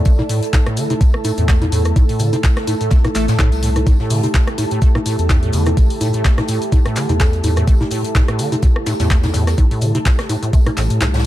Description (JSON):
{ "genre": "acid house", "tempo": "126 BPM", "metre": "4/4", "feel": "swing 55% on 16ths", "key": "unclear", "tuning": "A4 = 440 Hz", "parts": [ { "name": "thumb-piano-like synth pluck", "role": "melody", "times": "0.0-0.3, 7.2-7.4 s", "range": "A4 to D5", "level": "-30 LUFS", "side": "left 2 dB", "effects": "chorus, phaser, ping-pong delay" }, { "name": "dark analog pad", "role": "sustained chords", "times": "0.0-11.3 s", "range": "A3 to A4", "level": "-26 LUFS", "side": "right 1 dB", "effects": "chorus, sidechain pumping" }, { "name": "deep acid bass", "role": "riff", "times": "0.0-11.3 s", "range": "A2 to A3", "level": "-22 LUFS", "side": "equal", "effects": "lush chorus, sidechain pumping" }, { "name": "saturated sub bass", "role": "bass", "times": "0.0-11.3 s", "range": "A1 to A2", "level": "-18 LUFS", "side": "equal", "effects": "sidechain pumping" }, { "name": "ethereal airy pad", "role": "texture", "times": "0.0-11.3 s", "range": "E4 to A5", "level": "-26 LUFS", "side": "right 2 dB", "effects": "ensemble chorus, built-in reverb, sidechain pumping" }, { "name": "electronic kick drum", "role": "drums", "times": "0.1-10.6 s", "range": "none", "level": "-13 LUFS", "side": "equal", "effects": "none" }, { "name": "jazz brush drum kit", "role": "drums", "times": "0.1-11.2 s", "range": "hi-hat, snare drum, tambourine", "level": "-34 LUFS", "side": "left 2 dB", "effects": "sidechain pumping on hats, high-pass filter on hats, high-pass filter on snare, sidechain pumping on perc, high-pass filter on perc, high-pass filter on room" }, { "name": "punchy analog drum machine", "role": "drums", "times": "0.1-11.2 s", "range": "congas, handclaps, hi-hat, rim click", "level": "-24 LUFS", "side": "left 1 dB", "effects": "overdrive" }, { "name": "maracas", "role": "percussion", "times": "0.1-11.1 s", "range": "none", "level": "-34 LUFS", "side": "left 4 dB", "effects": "none" } ], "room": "small room ambience", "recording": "dark, warm production", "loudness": "-13 LUFS", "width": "side -14 dB against mid", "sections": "0.0-11.3 A section", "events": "kick drops out 11.0", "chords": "0.0 A5" }